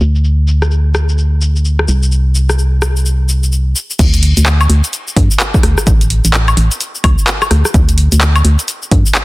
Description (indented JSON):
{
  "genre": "UK garage, two-step garage",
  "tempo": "128 BPM",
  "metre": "4/4",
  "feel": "swing 61% on 16ths",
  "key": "unclear",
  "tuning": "A4 = 439 Hz",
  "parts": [
    { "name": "organ-like FM bass", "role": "bass", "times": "0.0-9.0 s", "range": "A1 to G2", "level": "-11 LUFS", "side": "equal", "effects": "sidechain pumping" },
    { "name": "garage drum kit", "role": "drums", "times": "0.0-9.2 s", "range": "cabasa, crash cymbal, handclaps, hi-hat, rim click, woodblock", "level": "-16 LUFS", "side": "left 1 dB", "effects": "soft clipping on snare" },
    { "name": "electronic kick drum", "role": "drums", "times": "4.0-9.0 s", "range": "none", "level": "-12 LUFS", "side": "equal", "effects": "none" }
  ],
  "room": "little or no reverb",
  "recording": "dense, heavily limited modern master, low-pass filter",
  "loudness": "-10 LUFS",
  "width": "side -21 dB against mid",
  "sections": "0.0-4.0 A section; 4.0-9.2 B section",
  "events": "filter sweep 0.0-4.0; drop 4.0-9.2",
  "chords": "none"
}